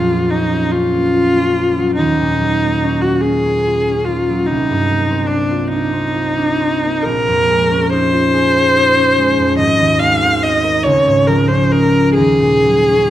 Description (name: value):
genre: classical, impressionist duo for viola and harp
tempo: 47 BPM (dotted quarters)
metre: 6/8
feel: uneven beats, rubato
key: unclear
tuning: A4 = 441 Hz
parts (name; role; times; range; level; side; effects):
- clear viola; melody; 0.0-13.1 s; D4 to F5; -14 LUFS; equal; none
- concert harp; accompaniment; 0.0-13.1 s; Ab1 to Bb4; -16 LUFS; equal; none
room: moderate recital hall reverb, RT60 1.5 s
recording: none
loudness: -12 LUFS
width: side -12 dB against mid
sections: 0.0-13.1 A section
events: none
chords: 0.0 Gbmaj7/Bb; 2.0 Ebm9; 4.5 Cm11; 7.0 Bbm11; 9.6 Abadd9; 10.8 Db69; 12.2 Ebm9